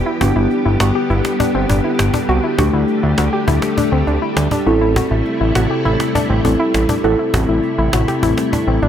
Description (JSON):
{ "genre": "synth-pop", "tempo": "101 BPM", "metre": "4/4", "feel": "straight", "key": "A dorian", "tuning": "A4 = 440 Hz", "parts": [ { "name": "soft string machine", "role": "sustained chords", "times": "0.0-8.9 s", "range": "C3 to G4", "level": "-21 LUFS", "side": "left 1 dB", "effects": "ensemble chorus" }, { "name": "fat analog bass", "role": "bass", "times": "0.0-8.9 s", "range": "G1 to D2", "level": "-17 LUFS", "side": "equal", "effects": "none" }, { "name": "soft round pluck", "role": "arpeggios", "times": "0.1-8.9 s", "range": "C4 to G4", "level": "-21 LUFS", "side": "left 3 dB", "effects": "chorus, slapback echo" }, { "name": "muted felt-like synth keys", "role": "accompaniment", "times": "0.2-8.9 s", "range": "A3 to A4", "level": "-20 LUFS", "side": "right 1 dB", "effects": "chorus" }, { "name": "cajon", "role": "drums", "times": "0.2-8.9 s", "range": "none", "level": "-22 LUFS", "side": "equal", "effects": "none" } ], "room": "light reverb", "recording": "none", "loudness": "-14 LUFS", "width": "side -9 dB against mid", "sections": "0.0-8.9 A section", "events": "none", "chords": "0.2 G; 2.6 Dsus4; 4.7 Am7" }